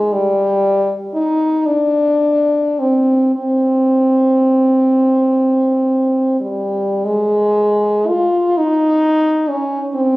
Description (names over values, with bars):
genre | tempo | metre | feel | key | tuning
classical, free, expressive piece for unaccompanied French horn | 24-44 BPM (dotted quarters) | 6/8 | rubato | unclear | A4 = 441 Hz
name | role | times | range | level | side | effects
warm French horn | solo | 0.0-10.2 s | G3 to F4 | -13 LUFS | equal | none
room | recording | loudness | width
wet recital hall reverb, RT60 1.7 s | recorded on a phone in the room, club ambience, compression | -13 LUFS | side -19 dB against mid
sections
0.0-7.1 A section; 7.1-10.2 B section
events
none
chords
none